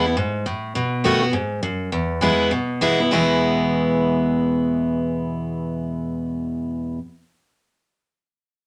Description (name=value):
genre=rock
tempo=203 BPM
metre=4/4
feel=swing 63% on 8ths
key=E major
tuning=A4 = 440 Hz
part: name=picked steel-string acoustic guitar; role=solo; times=0.0-7.0 s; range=E2 to F#4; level=-22 LUFS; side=equal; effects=none
room=moderate studio reverb, RT60 0.5 s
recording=none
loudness=-22 LUFS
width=mono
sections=0.7-3.1 A section; 3.1-5.5 B section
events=none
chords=0.0 E; 0.7 B7; 1.9 E